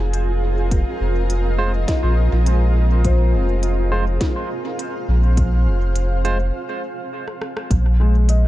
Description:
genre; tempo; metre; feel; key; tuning
ambient dub; 103 BPM; 4/4; straight; unclear; A4 = 445 Hz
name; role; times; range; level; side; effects
granular cloud pad; sustained chords; 0.0-8.5 s; Bb3 to F5; -26 LUFS; equal; built-in reverb, vintage 12-bit sampler grit
warm sub bass; bass; 0.0-8.5 s; F1 to Bb1; -16 LUFS; equal; none
bubbling stepped-filter texture; texture; 0.0-6.5 s; F4 to F5; -35 LUFS; right 2 dB; none
organic electronic drum kit; drums; 0.1-8.4 s; hi-hat, rim click, snare drum; -32 LUFS; equal; small room ambience, dub echo
electronic kick drum; drums; 0.7-7.8 s; none; -21 LUFS; equal; overdrive, small room ambience
barky tine electric piano; stabs; 1.6-6.4 s; Ab3 to C5; -30 LUFS; right 2 dB; medium stereo tremolo, dub echo
felt-muted upright piano; arpeggios; 1.9-8.5 s; F3 to Eb5; -31 LUFS; left 5 dB; tape echo
room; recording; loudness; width
little or no reverb; dark, warm production, tape saturation; -16 LUFS; side -15 dB against mid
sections
0.0-7.7 A section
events
break 6.5-7.7; drum fill 7.3-7.7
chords
0.0 Ab6; 7.7 Bb7(no3)

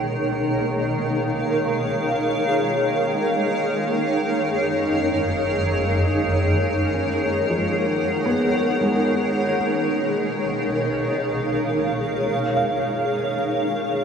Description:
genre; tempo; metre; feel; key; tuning
ambient; free time; none; none; unclear; A4 = 437 Hz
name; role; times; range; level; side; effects
granular cloud pad; sustained chords; 0.0-14.0 s; F#2 to F#5; -20 LUFS; equal; built-in reverb, analog chorus, shimmer reverb
felt-muted upright piano; arpeggios; 0.0-14.0 s; E#3 to E#5; -28 LUFS; equal; tape echo, shimmer reverb
overtone-sweeping drone; drone; 0.0-14.0 s; D#3; -34 LUFS; right 2 dB; chorus, built-in reverb, phaser
room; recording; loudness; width
wet plate reverb, RT60 3.4 s; dreamy mix soaked in reverb; -19 LUFS; side -6 dB against mid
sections
0.0-14.0 A section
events
fade-in on felt piano 0.0-14.0; fade-out on synth drone 0.0-14.0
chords
0.0 Bmaj7; 1.5 C#; 4.2 F#6; 6.9 G#m7; 9.6 Bmaj7; 12.2 C#7

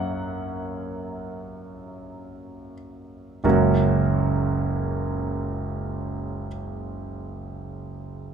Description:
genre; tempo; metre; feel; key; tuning
classical, romantic nocturne for solo piano; free time; none; none; F# major; A4 = 440 Hz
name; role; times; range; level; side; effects
warm concert grand piano; solo; 0.0-8.3 s; F#1 to F#5; -24 LUFS; right 2 dB; none
room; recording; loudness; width
moderate large studio reverb, RT60 1.4 s; close, detailed microphones; -23 LUFS; side -7 dB against mid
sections
0.0-3.4 A section; 3.4-8.3 B section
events
slowing down 0.0-3.4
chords
0.0 F#

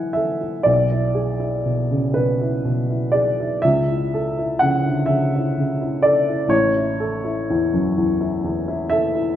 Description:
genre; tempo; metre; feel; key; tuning
classical, romantic nocturne for solo piano; 41 BPM (dotted quarters); 6/8; rubato; A major; A4 = 440 Hz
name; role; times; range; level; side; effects
warm upright piano; solo; 0.0-9.4 s; A1 to G#5; -18 LUFS; equal; none
room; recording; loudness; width
wet recital hall reverb, RT60 1.4 s; none; -18 LUFS; side -11 dB against mid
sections
0.0-9.4 A section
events
none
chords
0.0 A5; 0.7 E7/B; 3.7 A/C#; 6.5 A

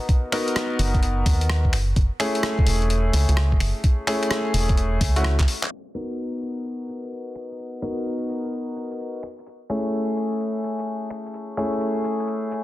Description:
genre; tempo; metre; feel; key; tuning
UK garage, two-step garage; 128 BPM; 4/4; swing 65% on 16ths; unclear; A4 = 440 Hz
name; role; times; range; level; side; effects
bright concert grand piano; stabs; 0.0-12.6 s; A3 to A#4; -26 LUFS; left 1 dB; vintage 12-bit sampler grit, low-pass filter, ping-pong delay
boom bap sampler-style drum kit; drums; 0.1-12.6 s; finger snaps, handclaps, hi-hat, rim click, shaker; -28 LUFS; equal; low-pass filter on hats, soft clipping on snare, low-pass filter on snare, low-pass filter on perc
electronic kick drum; drums; 0.1-5.5 s; none; -20 LUFS; equal; none
organ-like FM bass; bass; 0.8-5.5 s; E1 to D#2; -21 LUFS; equal; sidechain pumping
room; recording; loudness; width
light reverb; dense, heavily limited modern master, low-pass filter; -21 LUFS; side -16 dB against mid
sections
0.0-5.7 A section; 5.7-12.6 B section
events
drum fill 5.4-5.7; band accent 5.6; filter sweep on grand piano 5.7-12.6; filter sweep 5.7-12.6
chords
0.0 G#m9 (rootless); 1.7 F#m9; 5.7 Bmaj7; 9.2 F#m9 (rootless)

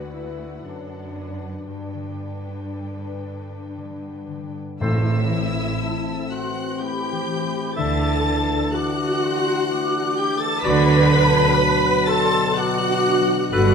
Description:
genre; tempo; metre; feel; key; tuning
cinematic, emotional film score for orchestra; 56-64 BPM; 3/4; rubato; A dorian; A4 = 444 Hz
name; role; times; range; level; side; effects
warm studio violin section; melody; 0.0-13.7 s; F#5 to B6; -29 LUFS; left 4 dB; none
rich studio violin section; second line; 0.0-13.7 s; A4 to B5; -29 LUFS; left 1 dB; none
dark studio viola section; accompaniment; 0.0-13.7 s; D4 to B4; -25 LUFS; equal; none
concert harp; arpeggios; 0.0-13.7 s; G2 to D5; -29 LUFS; left 6 dB; none
rich studio cello section; bass; 0.0-13.7 s; D2 to D3; -25 LUFS; right 3 dB; none
clear oboe; second line; 4.8-13.7 s; B4 to E5; -30 LUFS; equal; none
warm clarinet; second line; 4.8-13.7 s; F#4 to A4; -29 LUFS; right 2 dB; none
mellow French horn section; sustained chords; 4.8-13.7 s; B2 to D4; -27 LUFS; left 1 dB; none
rich chamber double bass section; bass; 4.8-13.7 s; G1 to D2; -26 LUFS; right 3 dB; none
timpani; percussion; 4.8-6.3 s; A2; -29 LUFS; left 1 dB; none
mellow large flute ensemble; second line; 5.8-13.7 s; A5 to D6; -27 LUFS; left 1 dB; none
room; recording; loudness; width
wet scoring stage reverb, RT60 1.6 s; minimal, uncompressed stereo recording; -18 LUFS; side -6 dB against mid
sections
0.0-4.8 A section; 4.8-13.7 B section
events
none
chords
0.0 Dadd9; 1.7 Gadd9; 4.8 Am; 7.8 Dadd9; 10.7 Bm/D

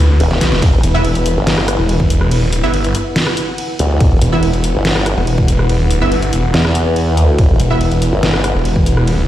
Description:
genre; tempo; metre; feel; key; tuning
heavy wobble dubstep; 142 BPM; 4/4; half-time; E minor; A4 = 437 Hz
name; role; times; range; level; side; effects
snarling distorted saw bass; bass; 0.0-9.3 s; E1 to D2; -14 LUFS; equal; distortion, overdrive
ethereal airy pad; texture; 0.0-9.3 s; E4 to B5; -22 LUFS; left 2 dB; ensemble chorus, built-in reverb, sidechain pumping
formant-sweep wobble bass; bass; 0.2-8.5 s; E1 to E2; -14 LUFS; equal; chorus, overdrive
dubstep drum kit; drums; 0.2-9.2 s; hi-hat, ride cymbal, rim click, snare drum; -20 LUFS; equal; none
electronic kick drum; drums; 0.6-8.8 s; none; -12 LUFS; equal; none
orchestra-hit-like synth stab; stabs; 0.9-7.8 s; B3 to E5; -22 LUFS; right 3 dB; built-in reverb, dub echo
room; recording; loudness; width
little or no reverb; played on a big sound system in a bare room, large studio reverb; -11 LUFS; side -13 dB against mid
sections
0.0-9.3 A section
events
drum fill 0.3-0.6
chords
0.0 E5

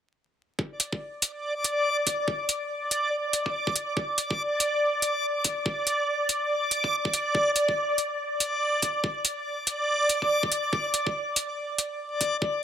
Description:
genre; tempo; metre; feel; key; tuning
deep dubstep; 142 BPM; 4/4; swing 60% on 16ths, half-time; unclear; A4 = 440 Hz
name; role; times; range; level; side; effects
electronic kick drum; drums; 0.6-12.5 s; none; -30 LUFS; equal; high-pass filter on kick, high-pass filter on room
backwards swelling texture; texture; 1.0-12.6 s; D5; -26 LUFS; equal; built-in reverb
electronic hi-hat; drums; 0.8-12.3 s; none; -24 LUFS; equal; none
room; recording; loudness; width
moderate huge ambient reverb, RT60 7.1 s; vinyl crackle; -24 LUFS; side -9 dB against mid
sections
0.6-12.6 A section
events
none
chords
none

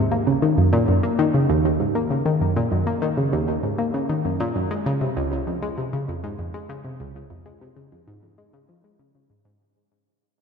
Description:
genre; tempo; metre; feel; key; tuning
ambient; 98 BPM; 4/4; straight; unclear; A4 = 440 Hz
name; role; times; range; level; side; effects
analog pluck; solo; 0.0-9.6 s; Db2 to Bb3; -20 LUFS; equal; chorus, ping-pong delay
room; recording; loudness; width
wet lush hall reverb, RT60 2.8 s; dark, warm production; -20 LUFS; side -6 dB against mid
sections
0.0-9.6 A section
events
fade-out 0.0-9.6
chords
none

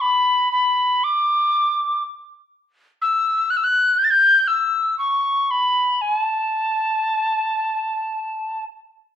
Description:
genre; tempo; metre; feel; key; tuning
celtic folk; 54-62 BPM; 3/4; rubato; A mixolydian; A4 = 441 Hz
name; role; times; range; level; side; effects
mellow wooden whistle; solo; 0.0-8.6 s; A5 to A6; -17 LUFS; left 1 dB; none
room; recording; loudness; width
moderate large studio reverb, RT60 1.0 s; band playing live in one room; -17 LUFS; side -9 dB against mid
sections
0.0-9.2 A section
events
none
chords
none

